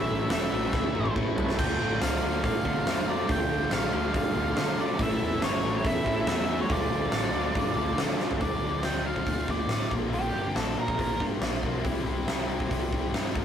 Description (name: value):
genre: classic rock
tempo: 140 BPM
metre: 4/4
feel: straight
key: D harmonic minor, D minor from 8.4 s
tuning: A4 = 440 Hz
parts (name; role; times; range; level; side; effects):
- octave-fuzz lead guitar; melody; 0.0-11.2 s; G4 to G5; -32 LUFS; equal; distortion
- picked steel-string acoustic guitar; accompaniment; 0.0-13.4 s; A2 to Bb4; -42 LUFS; left 3 dB; none
- bright tonewheel organ; sustained chords; 0.0-8.4 s; C#4 to D5; -43 LUFS; right 1 dB; none
- distorted electric guitar; riff; 0.0-13.4 s; G2 to E4; -35 LUFS; left 4 dB; overdrive
- overdriven electric guitar; riff; 0.0-8.4 s; A2 to F4; -32 LUFS; right 4 dB; none
- fuzz picked electric bass; bass; 0.0-13.4 s; E1 to D3; -33 LUFS; equal; overdrive
- huge arena drum kit; drums; 0.3-13.4 s; crash cymbal, hi-hat, kick drum, snare drum, toms; -28 LUFS; equal; none
room: moderate small room ambience, RT60 0.5 s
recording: rough rehearsal-room recording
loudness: -25 LUFS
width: side -9 dB against mid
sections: 0.0-8.4 A section; 8.4-13.4 B section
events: drum fill 0.7-1.6, 8.2; lead electric guitar solo 8.4-13.4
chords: 0.0 A; 1.6 Dm; 5.0 A; 6.7 Dm; 9.9 Bb; 11.8 C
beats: 0.30 0.73 1.16 | 1.58 2.01 2.43 2.86 | 3.29 3.71 4.14 4.56 | 4.99 5.42 5.84 6.27 | 6.70 7.12 7.55 7.98 | 8.41 8.84 9.27 9.69 | 10.12 10.55 10.98 11.41 | 11.84 12.27 12.70 13.13